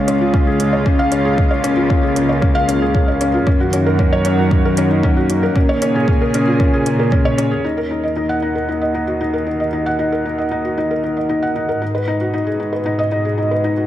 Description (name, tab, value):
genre	piano and strings electronica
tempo	115 BPM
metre	4/4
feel	straight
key	Eb minor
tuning	A4 = 441 Hz
part	lush unison pad	sustained chords	0.0-13.9 s	Cb3 to Ab4	-22 LUFS	right 1 dB	chorus, sidechain pumping
part	felt-muted upright piano	riff	0.0-13.9 s	Db4 to Gb5	-17 LUFS	left 1 dB	digital delay
part	warm symphonic cello section	bass	0.0-13.9 s	Db2 to Bb2	-22 LUFS	right 1 dB	sidechain pumping
part	electronic hi-hat	drums	0.1-7.5 s	none	-27 LUFS	right 3 dB	overdrive
part	electronic kick drum	drums	0.3-7.2 s	none	-16 LUFS	equal	none
room	light reverb, small room ambience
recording	none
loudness	-14 LUFS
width	side -12 dB against mid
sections	0.0-7.6 A section; 7.6-13.9 B section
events	none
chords	0.0 Db; 3.5 Gb6; 5.6 Bbm7; 7.6 Ebm; 11.8 Abm7